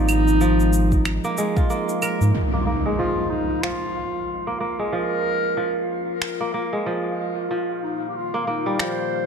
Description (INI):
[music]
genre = organic downtempo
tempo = 93 BPM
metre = 4/4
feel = swing 58% on 16ths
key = Bb dorian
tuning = A4 = 442 Hz
[part]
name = mellow clarinet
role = melody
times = 0.0-9.3 s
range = Eb4 to C5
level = -26 LUFS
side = left 1 dB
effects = ping-pong delay
[part]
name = warbly tape-like pad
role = sustained chords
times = 0.0-9.3 s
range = Bb2 to Bb4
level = -30 LUFS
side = right 4 dB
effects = chorus, built-in reverb, sidechain pumping
[part]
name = kora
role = arpeggios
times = 0.0-9.3 s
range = F3 to Bb4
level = -26 LUFS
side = right 1 dB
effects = low-pass filter, ping-pong delay
[part]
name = round analog bass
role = bass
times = 0.0-2.3 s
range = Ab1 to Ab2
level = -19 LUFS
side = equal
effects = sidechain pumping
[part]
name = wind-like tuned noise texture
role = texture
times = 0.0-9.3 s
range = Eb4 to F5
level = -31 LUFS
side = left 2 dB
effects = built-in reverb
[part]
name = electronic claves, cabasa and finger snaps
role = drums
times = 0.1-8.9 s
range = none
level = -28 LUFS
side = right 1 dB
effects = none
[part]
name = electronic kick drum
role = drums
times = 0.9-1.7 s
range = none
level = -20 LUFS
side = equal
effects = none
[part]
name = impact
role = sound effects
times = 2.3-4.9 s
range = none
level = -27 LUFS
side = equal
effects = none
[sound]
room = moderate lush hall reverb, RT60 2.4 s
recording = none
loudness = -20 LUFS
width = side -6 dB against mid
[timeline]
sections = 0.0-2.3 A section; 2.3-9.3 B section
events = impact 2.3-4.9; filter sweep on kora 2.3-9.3; filter sweep on ambient pad 2.3-9.3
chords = 0.0 Ab6; 2.3 Bbm7; 7.5 Cm7/Bb